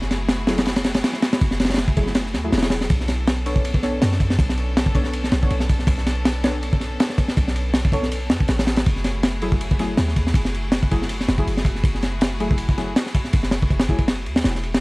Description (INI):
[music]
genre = drum and bass, jungle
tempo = 161 BPM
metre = 4/4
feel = swing 55% on 16ths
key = unclear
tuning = A4 = 441 Hz
[part]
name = rich studio string section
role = sustained chords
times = 0.0-14.8 s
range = A3 to A4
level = -32 LUFS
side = equal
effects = vintage 12-bit sampler grit
[part]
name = warm 808-style bass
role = bass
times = 0.0-14.8 s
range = E1 to F#2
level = -24 LUFS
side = equal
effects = none
[part]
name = crunchy breakbeat drum kit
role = drums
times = 0.0-14.8 s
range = kick drum, ride cymbal, snare drum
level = -20 LUFS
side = equal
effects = none
[part]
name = deep mellow chord stab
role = stabs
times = 0.5-14.0 s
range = F#3 to C#5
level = -29 LUFS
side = left 1 dB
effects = chorus, dub echo
[sound]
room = studio ambience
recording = dry, gritty hardware recording, vinyl crackle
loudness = -18 LUFS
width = side -24 dB against mid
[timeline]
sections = 0.0-14.8 A section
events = drop 0.0-14.8; kick drops out 14.1-14.8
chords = 0.0 F#m9; 2.9 Bm9; 8.9 F#m9